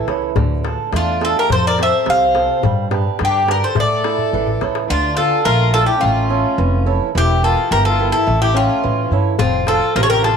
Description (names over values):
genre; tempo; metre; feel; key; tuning
greek folk, Greek bouzouki band; 106 BPM; 2/4; straight; D harmonic minor from 4.9 s; A4 = 440 Hz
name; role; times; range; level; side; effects
Greek bouzouki; melody; 0.0-10.4 s; F4 to F5; -18 LUFS; equal; none
warm violin; second line; 0.0-10.4 s; C4 to C5; -22 LUFS; left 10 dB; none
fingerpicked swing-style acoustic guitar; accompaniment; 0.0-10.4 s; C3 to E5; -22 LUFS; right 12 dB; none
upright bass; bass; 0.0-10.4 s; E1 to A2; -19 LUFS; equal; none
darbuka; percussion; 0.1-4.9, 9.4-10.4 s; none; -23 LUFS; left 6 dB; none
room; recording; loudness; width
moderate echo chamber reverb, RT60 1.9 s, small room ambience; 1960s-style stereo with parts hard left and right; -14 LUFS; side -6 dB against mid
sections
0.0-4.9 A section; 4.9-10.4 B section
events
drum fill 4.2-4.9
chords
0.4 Dm; 1.5 F; 2.6 G; 3.8 A; 4.9 Dm; 6.0 A; 7.2 Edim; 8.3 A; 9.4 F